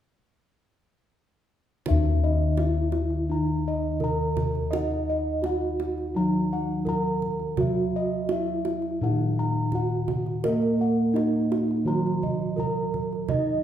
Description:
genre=Javanese gamelan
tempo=84 BPM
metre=4/4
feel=straight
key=unclear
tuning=A4 = 441 Hz
part: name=gamelan-type bronze metallophone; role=melody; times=1.9-13.6 s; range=Eb4 to Eb5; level=-29 LUFS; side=right 2 dB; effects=none
part: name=gamelan-type bronze metallophone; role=accompaniment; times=1.9-13.6 s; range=Eb3 to Eb4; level=-29 LUFS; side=right 1 dB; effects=none
part: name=gamelan-type bossed gongs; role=arpeggios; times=1.9-13.6 s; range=Eb5 to Bb5-30c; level=-33 LUFS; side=left 2 dB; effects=none
part: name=gamelan-type bossed gongs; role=bass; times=1.9-13.6 s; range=Eb2 to Eb5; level=-28 LUFS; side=left 2 dB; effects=none
part: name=kendang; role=percussion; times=1.9-13.5 s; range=none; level=-33 LUFS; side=right 4 dB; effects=none
room=wet recital hall reverb, RT60 1.3 s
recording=recorded in a church or concert hall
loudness=-23 LUFS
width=side -10 dB against mid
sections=1.9-13.6 A section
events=none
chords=none

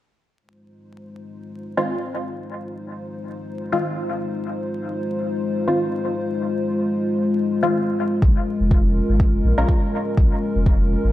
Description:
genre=dub techno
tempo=123 BPM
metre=4/4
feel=swing 56% on 16ths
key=F minor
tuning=A4 = 440 Hz
part: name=dark analog pad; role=sustained chords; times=1.0-11.1 s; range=Ab3 to C5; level=-24 LUFS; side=left 1 dB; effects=chorus, sidechain pumping
part: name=filtered dub chord stab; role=stabs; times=1.8-9.7 s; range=Eb3 to Bb4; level=-25 LUFS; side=left 1 dB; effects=chorus, phaser, vintage 12-bit sampler grit, sidechain pumping, dub echo
part: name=pure sine sub bass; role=bass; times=8.2-11.1 s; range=F1 to Bb1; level=-20 LUFS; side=equal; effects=sidechain pumping
part: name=electronic kick drum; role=drums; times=8.2-10.8 s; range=none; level=-17 LUFS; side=equal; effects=none
room=moderate plate reverb, RT60 2.0 s, digital ambience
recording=dreamy mix soaked in reverb, vinyl crackle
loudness=-19 LUFS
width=side -14 dB against mid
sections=0.4-11.1 A section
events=none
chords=0.4 Fm7; 8.2 Bbm7

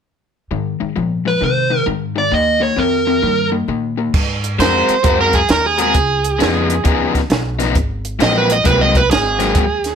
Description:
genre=electric blues shuffle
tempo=133 BPM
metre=4/4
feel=swing 65% on 8ths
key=Ab mixolydian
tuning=A4 = 435 Hz
part: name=overdriven electric guitar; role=riff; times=0.5-9.6 s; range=Ab2 to Bb4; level=-18 LUFS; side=left 7 dB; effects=none
part: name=upright bass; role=bass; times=0.5-9.9 s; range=Ab1 to C3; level=-22 LUFS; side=equal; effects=none
part: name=dark smooth lead guitar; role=melody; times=1.3-3.5 s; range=Bb4 to Eb5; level=-16 LUFS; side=right 2 dB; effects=overdrive
part: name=compact cocktail drum kit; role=drums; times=4.1-9.9 s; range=crash cymbal, hi-hat, kick drum, snare drum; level=-18 LUFS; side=right 1 dB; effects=none
part: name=overdriven slide guitar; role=second line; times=4.6-9.9 s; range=Ab4 to Eb5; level=-16 LUFS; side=right 5 dB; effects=none
room=light reverb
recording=none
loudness=-13 LUFS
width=side -7 dB against mid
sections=0.5-4.1 A section; 4.1-9.9 B section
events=electric slide guitar solo 4.1-9.9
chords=0.5 Ab; 2.3 Eb; 4.1 Ab9; 5.9 Db9; 7.7 Ab9

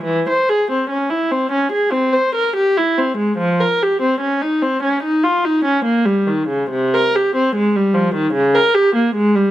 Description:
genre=classical, baroque-style suite movement for unaccompanied viola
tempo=72 BPM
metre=4/4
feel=rubato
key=F minor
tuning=A4 = 441 Hz
part: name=warm viola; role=solo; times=0.0-9.5 s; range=C3 to C5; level=-14 LUFS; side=equal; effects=none
room=light reverb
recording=close, detailed microphones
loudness=-14 LUFS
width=side -13 dB against mid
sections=0.0-9.5 A section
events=none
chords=none

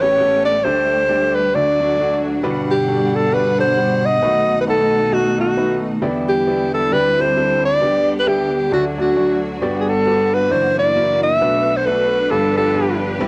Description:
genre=uptempo gospel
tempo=134 BPM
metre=4/4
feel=swing 59% on 8ths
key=G major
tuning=A4 = 440 Hz
part: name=clear alto saxophone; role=melody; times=0.0-13.0 s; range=F#4 to E5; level=-18 LUFS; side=equal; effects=cassette tape
part: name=clear grand piano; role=accompaniment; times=0.0-13.3 s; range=F#1 to E5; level=-25 LUFS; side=equal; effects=cassette tape
part: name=bright studio string section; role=sustained chords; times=0.0-13.3 s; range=B2 to F#5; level=-26 LUFS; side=equal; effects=cassette tape
part: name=percussive tonewheel organ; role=sustained chords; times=2.4-13.3 s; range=B2 to F#5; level=-30 LUFS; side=equal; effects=fast rotary speaker, cassette tape
room=moderate studio ambience, RT60 0.5 s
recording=home recording on cassette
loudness=-17 LUFS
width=mono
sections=0.0-13.3 A section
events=none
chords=0.0 A9; 0.7 Dsus4; 1.5 D; 2.4 Gmaj7; 4.2 B7; 6.0 Em7; 6.9 D9sus4; 7.8 G/D; 8.7 D; 9.6 Gmaj7; 10.5 F#aug7; 11.4 Bm7; 12.3 G7

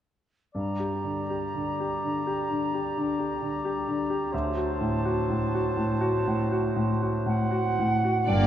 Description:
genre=classical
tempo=57-66 BPM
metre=4/4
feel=rubato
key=G minor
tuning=A4 = 441 Hz
part: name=clear concert grand piano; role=melody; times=0.5-8.5 s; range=D2 to G4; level=-26 LUFS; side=left 1 dB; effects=none
part: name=warm oboe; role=second line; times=0.5-7.9 s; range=C5 to D5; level=-36 LUFS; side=left 1 dB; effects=none
part: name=silver concert flute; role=second line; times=0.6-8.5 s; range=F#5 to Bb5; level=-32 LUFS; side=right 3 dB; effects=none
part: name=clear bassoon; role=accompaniment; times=0.6-8.0 s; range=F#3 to G3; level=-38 LUFS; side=right 3 dB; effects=none
part: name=rich chamber violin section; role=melody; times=8.3-8.5 s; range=D5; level=-29 LUFS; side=left 1 dB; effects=none
part: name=dark chamber violin section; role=second line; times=8.3-8.5 s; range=D4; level=-32 LUFS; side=right 2 dB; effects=none
part: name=dark chamber viola section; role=accompaniment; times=8.3-8.5 s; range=Bb3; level=-29 LUFS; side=right 3 dB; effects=none
part: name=warm chamber cello section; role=bass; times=8.3-8.5 s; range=G2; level=-26 LUFS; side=equal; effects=none
part: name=warm chamber double bass section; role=bass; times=8.3-8.5 s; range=G1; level=-28 LUFS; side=equal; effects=none
room=wet cathedral reverb, RT60 5.8 s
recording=in a vast, echoing space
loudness=-25 LUFS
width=side -10 dB against mid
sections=0.6-8.3 A section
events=none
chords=0.6 Gm; 4.3 D7

